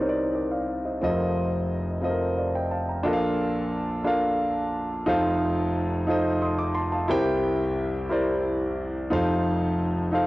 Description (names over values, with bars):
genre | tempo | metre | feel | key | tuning
gospel | 59 BPM (dotted quarters) | 6/8 | straight | Bb major | A4 = 440 Hz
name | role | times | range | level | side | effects
warm grand piano | solo | 0.0-10.3 s | F1 to Eb6 | -23 LUFS | equal | cassette tape
room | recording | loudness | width
moderate lush hall reverb, RT60 2.5 s | home recording on cassette | -23 LUFS | side -18 dB against mid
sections
0.0-3.0 A section; 3.0-10.3 B section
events
none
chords
0.0 Cm9; 1.0 F7sus4; 3.0 Bbmaj7; 5.1 F7; 7.1 C7; 9.1 F7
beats
0.00 | 1.01 2.02 | 3.04 4.05 | 5.07 6.08 | 7.09 8.10 | 9.11 10.12